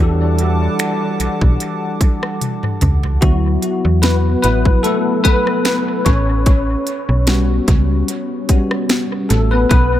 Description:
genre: contemporary R&B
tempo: 74 BPM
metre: 4/4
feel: swing 54% on 16ths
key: D major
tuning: A4 = 441 Hz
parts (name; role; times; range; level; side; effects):
- bell-like tine electric piano; accompaniment; 0.0-10.0 s; E3 to D5; -18 LUFS; left 2 dB; ensemble chorus, dub echo
- hollow soft pad; sustained chords; 0.0-3.2 s; G3 to D6; -24 LUFS; right 2 dB; chorus, sidechain pumping
- slap-like FM bass; bass; 0.0-10.0 s; A1 to E2; -15 LUFS; equal; none
- trap drum kit; drums; 0.4-9.9 s; finger snaps, hi-hat, kick drum, rim click, snare drum, toms; -17 LUFS; equal; dub echo
room: digital ambience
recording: echo-heavy mix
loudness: -13 LUFS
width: side -12 dB against mid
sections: 0.0-3.2 A section; 3.2-10.0 B section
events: drum fill 2.4-3.2; tine electric piano solo 3.2-10.0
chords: 0.0 Em11; 3.2 D69; 6.1 A13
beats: 0.79 1.60 2.41 | 3.22 4.03 4.84 5.66 | 6.47 7.28 8.09 8.90 | 9.71

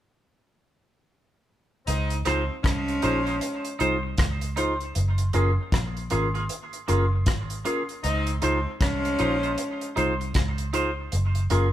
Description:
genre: lovers rock reggae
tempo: 78 BPM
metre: 4/4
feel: swing 61% on 16ths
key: Db major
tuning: A4 = 444 Hz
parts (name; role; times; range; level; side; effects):
- bright saxophone section; second line; 1.9-9.9 s; F3 to Eb4; -28 LUFS; equal; none
- vintage muted fingered electric bass; bass; 1.9-11.7 s; Gb1 to Db2; -26 LUFS; equal; none
- damped 70s drum kit; drums; 1.9-11.7 s; hi-hat, kick drum, rim click; -28 LUFS; equal; none
- tine electric piano; accompaniment; 2.3-11.7 s; Db4 to C5; -29 LUFS; left 1 dB; none
- twangy electric guitar; stabs; 2.3-11.7 s; Bb3 to C5; -30 LUFS; right 3 dB; tape echo
room: moderate stone room reverb, RT60 1.1 s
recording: band playing live in one room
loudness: -23 LUFS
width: side -12 dB against mid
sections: 1.9-11.7 A section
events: none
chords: 1.9 Dbmaj9; 5.0 Gbmaj9; 8.0 Dbmaj9; 11.1 Gbmaj9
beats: | 1.87 2.64 3.41 4.18 | 4.95 5.72 6.49 7.26 | 8.04 8.81 9.58 10.35 | 11.12

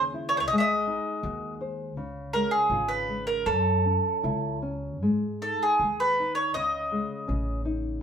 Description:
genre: fado-style ballad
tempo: 76-84 BPM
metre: 2/4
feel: rubato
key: C# minor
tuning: A4 = 445 Hz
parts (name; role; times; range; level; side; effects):
- bowl-back mandolin; melody; 0.0-7.6 s; G#4 to E5; -25 LUFS; right 1 dB; none
- nylon-string guitar; accompaniment; 0.0-8.0 s; C#3 to B#4; -32 LUFS; left 3 dB; none
- upright bass; bass; 0.0-8.0 s; G#1 to G#2; -32 LUFS; left 1 dB; none
room: wet studio reverb, RT60 0.7 s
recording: band playing live in one room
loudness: -24 LUFS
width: side -8 dB against mid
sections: 0.0-8.0 A section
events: none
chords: 0.5 G#7; 2.0 C#; 3.5 F#m7; 5.0 G#5; 6.5 C#sus2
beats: | 0.50 1.23 | 1.95 2.70 | 3.47 4.24 | 5.01 5.79 | 6.54 7.28 | 8.02

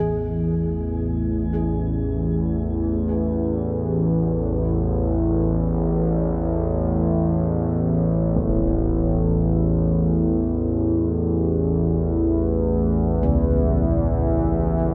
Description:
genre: dark ambient drone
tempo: free time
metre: none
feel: none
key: A major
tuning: A4 = 440 Hz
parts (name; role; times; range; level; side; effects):
- gamelan-type bossed gongs; arpeggios; 0.0-6.2, 13.2-14.9 s; C#2 to G#4; -30 LUFS; equal; diffuse ambient delay, shimmer reverb
- analog drone; drone; 0.0-14.9 s; A1 to E2; -22 LUFS; equal; chorus
- impact; percussion; 8.4-8.6 s; none; -34 LUFS; equal; none
room: moderate huge ambient reverb, RT60 7.7 s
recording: none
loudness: -22 LUFS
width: mono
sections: 0.0-14.9 A section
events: none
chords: 0.0 A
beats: free time

